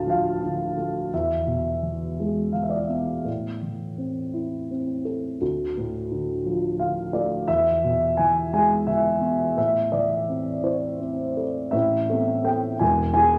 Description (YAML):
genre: classical, lyrical solo piano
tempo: 56 BPM (dotted quarters)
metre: 6/8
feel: rubato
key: A harmonic minor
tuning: A4 = 441 Hz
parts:
  - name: dark upright piano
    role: solo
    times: 0.0-13.4 s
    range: E1 to A5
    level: -24 LUFS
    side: equal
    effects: none
room: wet recital hall reverb, RT60 1.3 s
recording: none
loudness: -24 LUFS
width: mono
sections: 0.0-11.7 A section; 11.7-13.4 B section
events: upright piano fill 6.5-7.5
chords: 0.0 Dm; 1.1 E; 3.3 Am; 5.4 Dm; 7.5 E; 9.6 Am; 11.7 Amadd9; 12.8 E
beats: 0.07 | 1.12 2.19 | 3.27 4.34 | 5.41 6.45 | 7.48 8.52 | 9.57 10.64 | 11.73 12.81